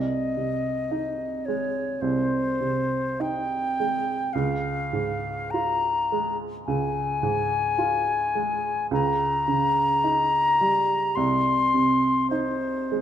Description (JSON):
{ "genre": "classical, romantic duo for flute and grand piano", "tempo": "53 BPM", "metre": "4/4", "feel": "rubato", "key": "Ab major", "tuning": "A4 = 441 Hz", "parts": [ { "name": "concert flute", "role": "melody", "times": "0.0-13.0 s", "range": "C5 to C6", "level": "-24 LUFS", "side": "left 3 dB", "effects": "none" }, { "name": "warm baby grand piano", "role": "accompaniment", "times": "0.0-13.0 s", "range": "C2 to F4", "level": "-26 LUFS", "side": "right 4 dB", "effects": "none" } ], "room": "wet recital hall reverb, RT60 1.5 s", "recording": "none", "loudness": "-22 LUFS", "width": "side -10 dB against mid", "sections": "0.0-13.0 A section", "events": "none", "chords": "0.0 Ab/C; 4.3 Db; 8.9 Eb7/Db; 11.2 Ab/C (rootless)" }